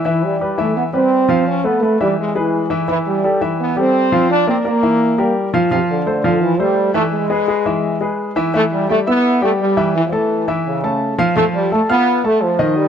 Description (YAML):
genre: latin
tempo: 170 BPM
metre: 4/4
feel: straight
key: unclear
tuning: A4 = 440 Hz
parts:
  - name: clear grand piano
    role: accompaniment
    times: 0.0-12.9 s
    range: D#3 to E#6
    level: -17 LUFS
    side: left 1 dB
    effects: none
  - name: bright trombone section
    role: melody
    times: 0.1-12.9 s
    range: C3 to D4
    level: -16 LUFS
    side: right 1 dB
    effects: none
room: light reverb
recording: none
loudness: -14 LUFS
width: side -8 dB against mid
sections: 0.0-8.5 A section; 8.5-12.9 B section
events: none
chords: 0.1 Cmaj7; 1.5 C#7alt; 2.2 E; 2.9 Am7; 4.3 Bb; 5.0 Edim; 5.7 F69; 7.1 E; 8.5 Em; 10.0 A; 11.4 B7#11